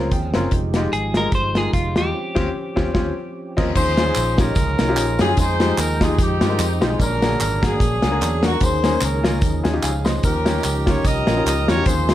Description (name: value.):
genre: uptempo gospel.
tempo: 148 BPM.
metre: 4/4.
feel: swing 56% on 8ths.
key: unclear.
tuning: A4 = 439 Hz.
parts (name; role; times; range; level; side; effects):
clean electric guitar; melody; 0.0-3.5 s; F4 to C5; -26 LUFS; left 1 dB; none.
clear baby grand piano; accompaniment; 0.0-12.1 s; Bb2 to C6; -24 LUFS; left 2 dB; none.
mellow tonewheel organ; sustained chords; 0.0-12.1 s; D3 to G5; -29 LUFS; right 3 dB; slow rotary speaker, chorus vibrato.
fingered electric bass; bass; 0.0-12.1 s; F1 to G2; -23 LUFS; equal; none.
modern studio drum kit; drums; 0.1-12.1 s; crash cymbal, hi-hat, kick drum, snare drum; -21 LUFS; equal; none.
warm horn section; melody; 3.8-12.1 s; C4 to Eb5; -22 LUFS; equal; none.
tambourine and handclaps; percussion; 3.8-12.1 s; none; -31 LUFS; right 1 dB; none.
room: small room ambience.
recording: none.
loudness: -17 LUFS.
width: side -13 dB against mid.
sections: 0.0-3.8 A section; 3.8-12.1 B section.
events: grand piano fill 0.0-0.5, 9.6-10.2; band accent 2.1-3.8.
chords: 0.0 Dbmaj7; 0.5 Fm9; 2.1 Eb13; 3.8 Eb9sus4; 5.4 Fm9; 7.0 Bb7alt; 8.6 Eb7sus4; 9.4 Eb9sus4; 10.2 Eb9.